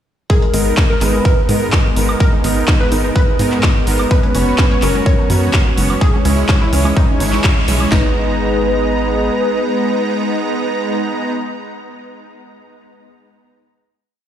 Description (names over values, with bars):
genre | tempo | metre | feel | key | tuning
progressive house | 126 BPM | 4/4 | straight | G# minor | A4 = 441 Hz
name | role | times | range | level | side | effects
warm velvety synth lead | melody | 0.3-11.3 s | A#4 to B4 | -23 LUFS | equal | chorus, sidechain pumping, digital delay
lush unison pad | sustained chords | 1.0-11.3 s | E3 to A#5 | -23 LUFS | left 2 dB | chorus, sidechain pumping
wide unison pluck | arpeggios | 0.3-11.3 s | G#3 to C#5 | -24 LUFS | equal | cassette tape, sidechain pumping, digital delay
big-room dance drum kit | drums | 0.3-8.0 s | handclaps, kick drum, snare drum | -14 LUFS | equal | none
dusty soul sampler-style drum kit | drums | 0.3-7.8 s | hi-hat, snare drum | -32 LUFS | equal | none
soft supersaw | stabs | 0.5-11.3 s | G#3 to A#5 | -20 LUFS | right 2 dB | sidechain pumping, digital delay
tight sequencer bass | bass | 0.5-9.3 s | F#1 to G#2 | -18 LUFS | equal | sidechain pumping
big-room dance drum kit | drums | 0.5-7.9 s | handclaps, hi-hat, woodblock | -22 LUFS | left 1 dB | sidechain pumping on hats, sidechain pumping on perc
woodblock and congas | percussion | 4.1-7.8 s | none | -25 LUFS | right 2 dB | sidechain pumping on perc
room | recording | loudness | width
light reverb, digital ambience | played on a big sound system in a bare room, stone room reverb | -12 LUFS | side -10 dB against mid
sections
0.3-7.9 drop; 7.9-11.7 final chord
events
drop 0.3-7.9; band accent 7.4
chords
0.3 G#madd9; 4.1 F#sus4; 6.0 C#m; 7.9 G#madd9